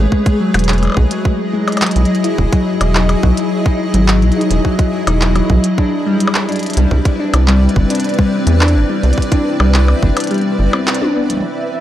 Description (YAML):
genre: IDM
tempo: 106 BPM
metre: 4/4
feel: straight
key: unclear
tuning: A4 = 440 Hz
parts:
  - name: granular cloud pad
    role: sustained chords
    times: 0.0-11.8 s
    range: F#3 to D#5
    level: -19 LUFS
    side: left 1 dB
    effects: built-in reverb
  - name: rubbery square bass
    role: bass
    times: 0.0-10.7 s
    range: E1 to E2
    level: -13 LUFS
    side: equal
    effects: tube saturation
  - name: harp-like synth pluck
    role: arpeggios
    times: 0.1-11.3 s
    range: F#3 to E4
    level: -17 LUFS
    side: left 1 dB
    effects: chorus, tape echo
  - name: electronic kick drum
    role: drums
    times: 0.1-10.1 s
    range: none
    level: -15 LUFS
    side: equal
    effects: none
  - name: glitchy drum kit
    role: drums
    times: 0.3-11.4 s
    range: handclaps, hi-hat, percussion blips, snare drum, toms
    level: -19 LUFS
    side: equal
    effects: low-pass filter on hats, low-pass filter on perc, low-pass filter on snare, low-pass filter on toms, low-pass filter on room
  - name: bubbling stepped-filter texture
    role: texture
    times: 11.5-11.8 s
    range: E5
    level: -24 LUFS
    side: right 7 dB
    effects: chorus, built-in reverb
room: digital ambience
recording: dry, gritty hardware recording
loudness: -12 LUFS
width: side -12 dB against mid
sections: 0.0-11.4 A section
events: break 10.3-11.4; drum fill 10.9-11.4; band accent 10.9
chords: 0.1 Emaj9; 5.8 Cmaj9